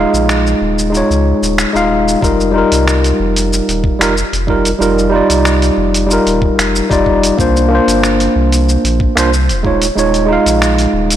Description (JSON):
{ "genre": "sunset chillout", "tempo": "93 BPM", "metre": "4/4", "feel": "straight", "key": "unclear", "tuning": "A4 = 439 Hz", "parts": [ { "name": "tine electric piano", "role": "accompaniment", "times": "0.0-11.2 s", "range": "G3 to F5", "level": "-12 LUFS", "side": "moving between left 4 dB and right 4 dB", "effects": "auto-pan, ping-pong delay" }, { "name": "warm sub bass", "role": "bass", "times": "0.0-11.2 s", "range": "Eb1 to Db2", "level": "-16 LUFS", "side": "equal", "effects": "none" }, { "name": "dusty soul sampler-style drum kit", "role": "drums", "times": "0.1-11.2 s", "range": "finger snaps, hi-hat, shaker", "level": "-18 LUFS", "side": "equal", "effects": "small room ambience, soft clipping on snare" }, { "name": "electronic kick drum", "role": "drums", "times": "2.2-9.8 s", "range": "none", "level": "-17 LUFS", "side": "equal", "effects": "small room ambience" } ], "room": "moderate scoring stage reverb, RT60 2.0 s", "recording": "blown-out, overdriven recording, overdrive", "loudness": "-10 LUFS", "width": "side -11 dB against mid", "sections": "0.0-2.2 A section; 2.2-11.2 B section", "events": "break 0.0-2.2; filter sweep on tine electric piano 0.0-2.2", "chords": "0.0 Eb9sus4; 2.2 F9sus4; 9.6 Eb9sus4" }